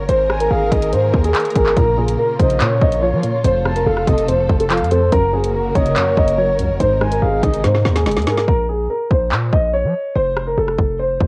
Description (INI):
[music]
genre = hip hop, drill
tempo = 143 BPM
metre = 4/4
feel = half-time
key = Bb minor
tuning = A4 = 441 Hz
[part]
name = dark concert grand piano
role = melody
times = 0.0-11.3 s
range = Ab4 to Eb5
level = -21 LUFS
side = equal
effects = cassette tape
[part]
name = breathy flute-like synth lead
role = second line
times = 0.0-8.5 s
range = Bb4 to A5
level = -26 LUFS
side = equal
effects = chorus, cassette tape, tape echo
[part]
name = warm symphonic string section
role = sustained chords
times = 0.0-8.5 s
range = C3 to Bb4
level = -27 LUFS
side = equal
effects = cassette tape
[part]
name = hard-hitting 808-style bass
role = bass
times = 0.0-11.3 s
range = F1 to F3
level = -22 LUFS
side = equal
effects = none
[part]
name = drill drum kit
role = drums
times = 0.1-11.3 s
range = handclaps, hi-hat, kick drum, rim click, snare drum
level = -22 LUFS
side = equal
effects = cassette tape
[part]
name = hollow square pluck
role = accompaniment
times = 1.8-8.5 s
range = F2 to Ab3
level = -24 LUFS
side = equal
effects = chorus, cassette tape
[sound]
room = little or no reverb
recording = home recording on cassette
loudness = -17 LUFS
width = mono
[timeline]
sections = 0.0-8.5 A section; 8.5-11.3 B section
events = drum fill 7.6-8.5; hi-hats muted 8.5-11.3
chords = 0.1 Absus2; 1.8 Bbmadd9; 3.4 F; 5.1 Gb; 6.8 Abadd9; 8.5 Bbmadd9; 10.2 F